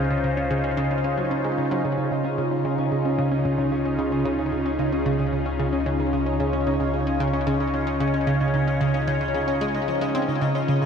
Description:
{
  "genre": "ambient, sequencer-driven space music",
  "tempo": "112 BPM",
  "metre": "4/4",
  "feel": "straight",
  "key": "Db major",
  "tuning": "A4 = 441 Hz",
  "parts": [
    { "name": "phased analog pad", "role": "sustained chords", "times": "0.0-10.9 s", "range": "Db3 to Db5", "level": "-25 LUFS", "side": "equal", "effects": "phaser, chorus, shimmer reverb" },
    { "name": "concert harp", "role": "arpeggios", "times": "0.0-10.9 s", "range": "Db4 to Ab4", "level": "-33 LUFS", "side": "equal", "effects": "auto-pan, ping-pong delay, shimmer reverb" },
    { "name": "analog pluck", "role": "riff", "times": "0.0-10.9 s", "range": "Db3 to Db4", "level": "-24 LUFS", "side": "equal", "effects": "chorus, phaser, cassette tape, ping-pong delay, shimmer reverb" },
    { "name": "round analog bass", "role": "bass", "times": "0.0-10.9 s", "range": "Db2", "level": "-32 LUFS", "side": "equal", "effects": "none" },
    { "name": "pulsing gated texture", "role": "texture", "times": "0.0-10.9 s", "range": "Db4 to Eb5", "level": "-37 LUFS", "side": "left 4 dB", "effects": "chorus, built-in reverb, shimmer reverb" }
  ],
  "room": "wet cathedral reverb, RT60 6.8 s",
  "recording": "in a vast, echoing space",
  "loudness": "-21 LUFS",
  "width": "side -7 dB against mid",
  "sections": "0.0-10.9 A section",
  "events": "none",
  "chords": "0.0 Dbadd9"
}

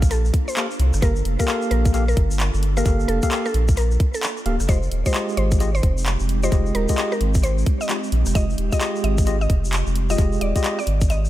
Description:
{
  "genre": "UK garage, two-step garage",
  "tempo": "131 BPM",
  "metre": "4/4",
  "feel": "swing 63% on 16ths",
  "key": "unclear",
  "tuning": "A4 = 439 Hz",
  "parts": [
    { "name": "ethereal airy pad", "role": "sustained chords", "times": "0.0-11.3 s", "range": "Ab3 to A4", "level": "-31 LUFS", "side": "right 2 dB", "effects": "ensemble chorus, built-in reverb, sidechain pumping" },
    { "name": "saturated sub bass", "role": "bass", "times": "0.0-11.3 s", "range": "D1 to C2", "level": "-20 LUFS", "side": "equal", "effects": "none" },
    { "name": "electronic kick drum", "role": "drums", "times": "0.0-11.1 s", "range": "none", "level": "-20 LUFS", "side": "equal", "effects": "none" },
    { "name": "punchy analog drum machine", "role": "drums", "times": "0.0-11.2 s", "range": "handclaps, hi-hat, rim click", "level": "-28 LUFS", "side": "equal", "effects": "tape echo" },
    { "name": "tube shaker", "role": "percussion", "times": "0.0-11.3 s", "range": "none", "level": "-35 LUFS", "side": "left 2 dB", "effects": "none" },
    { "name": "mallet-like synth pluck", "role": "melody", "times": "0.1-11.3 s", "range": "A4 to Eb5", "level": "-29 LUFS", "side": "equal", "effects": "chorus, analog delay" },
    { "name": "tine electric piano", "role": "stabs", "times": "0.6-10.8 s", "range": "Ab3 to F5", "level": "-27 LUFS", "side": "moving between left 6 dB and right 1 dB", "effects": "auto-pan, analog delay" }
  ],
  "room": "little or no reverb",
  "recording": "echo-heavy mix",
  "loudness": "-18 LUFS",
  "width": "side -14 dB against mid",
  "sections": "0.0-11.3 A section",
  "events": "none",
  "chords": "0.0 Gm9; 4.7 Fm9"
}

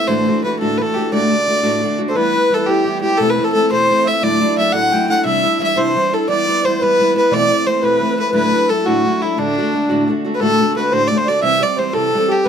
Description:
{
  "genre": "celtic folk, Celtic jig",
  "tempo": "116 BPM (dotted quarters)",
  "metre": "6/8",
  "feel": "straight",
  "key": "D mixolydian",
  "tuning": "A4 = 439 Hz",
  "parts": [
    { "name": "warm fiddle", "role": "melody", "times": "0.0-12.5 s", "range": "D4 to F#5", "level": "-17 LUFS", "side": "equal", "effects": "none" },
    { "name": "fingerpicked steel-string acoustic guitar", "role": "accompaniment", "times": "0.0-12.5 s", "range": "D2 to G4", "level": "-18 LUFS", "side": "equal", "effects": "none" },
    { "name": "mellow accordion", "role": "second line", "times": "2.1-12.5 s", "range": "D4 to G5", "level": "-20 LUFS", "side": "equal", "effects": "none" }
  ],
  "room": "light reverb",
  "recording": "close, detailed microphones",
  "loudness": "-13 LUFS",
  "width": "side -8 dB against mid",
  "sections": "0.0-2.2 A section; 2.2-10.4 A section; 10.4-12.5 B section",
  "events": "none",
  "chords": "0.1 Dadd9; 1.1 D; 2.2 Em; 3.2 Amadd9/E; 4.2 Dadd9; 5.3 Cadd9; 6.3 Em; 7.3 Amadd9/E; 8.3 Dadd9; 9.4 D; 11.4 C"
}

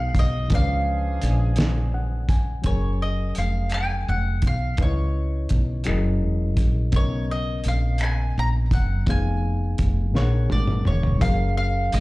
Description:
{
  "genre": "slow six-eight R&B",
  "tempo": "56 BPM (dotted quarters)",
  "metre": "6/8",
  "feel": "straight",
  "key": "F# major",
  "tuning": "A4 = 440 Hz",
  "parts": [
    { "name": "mandolin", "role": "melody", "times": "0.0-12.0 s", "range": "C#5 to A#5", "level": "-30 LUFS", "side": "equal", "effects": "none" },
    { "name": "reed electric piano", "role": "accompaniment", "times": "0.0-12.0 s", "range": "A#2 to G#5", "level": "-30 LUFS", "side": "left 3 dB", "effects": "none" },
    { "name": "warm horn section", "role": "stabs", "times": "0.0-2.3 s", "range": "D#3 to G#4", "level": "-38 LUFS", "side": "right 1 dB", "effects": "none" },
    { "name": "woody fretless electric bass", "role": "bass", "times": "0.0-12.0 s", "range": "E1 to C#2", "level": "-22 LUFS", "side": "equal", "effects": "none" },
    { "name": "cloth-damped thuddy drum kit", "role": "drums", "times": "0.1-12.0 s", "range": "finger snaps, hi-hat, kick drum, snare drum, toms", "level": "-24 LUFS", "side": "equal", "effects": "none" }
  ],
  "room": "small room ambience",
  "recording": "played on a big sound system in a bare room, large studio reverb",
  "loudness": "-20 LUFS",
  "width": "side -20 dB against mid",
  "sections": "0.0-2.6 A section; 2.6-11.2 B section",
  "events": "reed electric piano fill 1.6-2.6; drum fill 10.1-11.2",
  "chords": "0.0 G#m9; 0.5 C#7b9; 2.6 F#maj9; 4.8 C#m9; 5.9 F#13; 6.9 Bmaj9; 9.1 Fm7b5; 10.1 A#aug7; 11.2 F#maj9"
}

